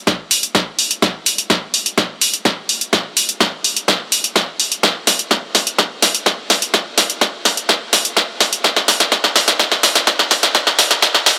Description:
house; 126 BPM; 4/4; straight
deep house drum kit; drums; 0.1-11.4 s; hi-hat, snare drum; -15 LUFS; equal; overdrive, high-pass filter on snare, sidechain pumping on hats, high-pass filter on hats, high-pass filter on room
electronic kick drum; drums; 0.1-11.1 s; -22 LUFS; equal; high-pass filter on kick
moderate huge ambient reverb, RT60 7.3 s; high-pass filter; -15 LUFS; mono
0.0-11.4 A section
build-up 0.0-11.4; drum fill 0.0-11.4

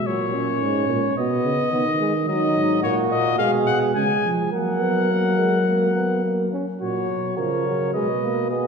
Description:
classical, imitative canzona for brass ensemble; 106 BPM; 4/4; straight; F# major; A4 = 440 Hz
clear trumpet; melody; 0.0-8.7 s; C#5 to G#5; -25 LUFS; left 6 dB
mellow tuba; bass; 0.0-8.7 s; G#2 to F#3; -24 LUFS; equal
mellow trombone; accompaniment; 0.1-8.7 s; E#3 to C#4; -25 LUFS; right 2 dB
dark flugelhorn; second line; 2.3-8.7 s; D#4 to B4; -24 LUFS; right 2 dB
wet scoring stage reverb, RT60 2.1 s; heard from further back in the room, lossy compression artefacts; -19 LUFS; side -5 dB against mid
0.0-6.8 A section; 6.8-8.7 B section
0.1 F#/A#; 1.2 B; 2.3 D#m; 3.4 B5; 4.0 C#; 4.5 F#; 6.8 F#/A#; 7.9 G#m/B

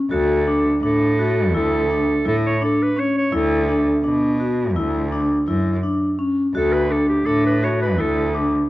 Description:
contemporary instrumental, chamber music in an uneven meter; 168 BPM (eighths); 9/8; straight; D major; A4 = 440 Hz
bright clarinet; melody; 0.1-8.3 s; G4 to C#5; -23 LUFS; right 2 dB
vibraphone with medium hard mallets; arpeggios; 0.1-8.6 s; C#4 to F#4; -20 LUFS; left 1 dB
rich cello; bass; 0.1-8.5 s; D2 to B2; -22 LUFS; right 1 dB
light reverb; worn, warbling old tape, cassette tape, warbly pitch drift; -17 LUFS; side -16 dB against mid
0.0-8.7 A section
0.1 D; 3.3 E5/D; 4.8 Dmaj9; 6.5 D

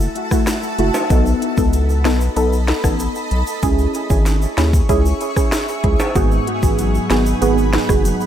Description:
dancehall; 95 BPM; 4/4; straight; A4 = 440 Hz
granular cloud pad; sustained chords; 0.0-8.3 s; F#4 to C#6; -26 LUFS; equal; built-in reverb, sidechain pumping
round analog bass; bass; 0.0-8.1 s; F#1 to D#2; -18 LUFS; equal
tube shaker and timbales; percussion; 0.0-8.3 s; -29 LUFS; equal
afro-pop drum kit; drums; 0.2-8.2 s; hi-hat, kick drum, rim click, snare drum; -19 LUFS; equal
deep mellow chord stab; accompaniment; 0.3-8.1 s; A3 to A4; -20 LUFS; right 1 dB; chorus, sidechain pumping, tape echo
mellow electric guitar; arpeggios; 6.2-8.3 s; G#2 to D#4; -22 LUFS; equal; ensemble chorus, tape echo
digital ambience; echo-heavy mix; -14 LUFS; side -10 dB against mid
0.0-8.3 A section
0.0 F#m7; 1.1 B7; 3.6 C#m; 6.2 G#m7

